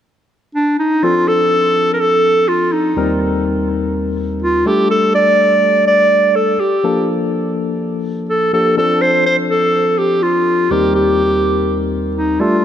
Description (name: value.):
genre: pop.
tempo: 124 BPM.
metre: 4/4.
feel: straight.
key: C dorian.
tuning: A4 = 440 Hz.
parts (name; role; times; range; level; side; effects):
clear clarinet; melody; 0.6-12.6 s; D4 to D5; -13 LUFS; right 1 dB; ping-pong delay.
barky tine electric piano; accompaniment; 1.0-12.6 s; Eb2 to Bb4; -18 LUFS; left 2 dB; medium stereo tremolo.
room: moderate lush hall reverb, RT60 2.5 s.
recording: dark, warm production.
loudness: -12 LUFS.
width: side -10 dB against mid.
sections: 0.0-1.0 A section; 1.0-12.6 B section.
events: none.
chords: 0.0 N.C.; 1.0 Dm7; 3.0 Cm7/Eb; 4.7 Gsus2; 6.8 Bbmaj7; 8.8 Dm7; 10.7 Cm7/Eb.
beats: 0.07 0.55 | 1.04 1.52 2.00 2.49 | 2.97 3.46 3.94 4.42 | 4.91 5.39 5.88 6.36 | 6.84 7.33 7.81 8.29 | 8.78 9.26 9.75 10.23 | 10.71 11.20 11.68 12.16.